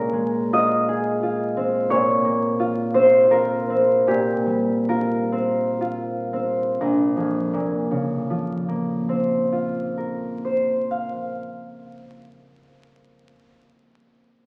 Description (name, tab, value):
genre	classical, solo harp piece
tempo	55-88 BPM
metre	3/4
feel	rubato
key	Bb dorian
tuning	A4 = 440 Hz
part	concert harp	solo	0.0-13.7 s	Bb1 to F5	-22 LUFS	equal	none
room	wet recital hall reverb, RT60 1.7 s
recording	very old 78 rpm record, vinyl crackle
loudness	-22 LUFS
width	mono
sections	0.0-6.8 A section; 6.8-12.2 B section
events	slowing down 0.9-6.8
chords	0.0 Ab69/Bb; 1.9 Bbmadd9; 4.1 Fsus24/Bb; 6.8 Bbmadd9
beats	0.51 1.21 | 1.89 2.58 3.30 | 4.07 4.89 5.81 | 6.83 7.73 8.61 | 9.49 10.40 11.29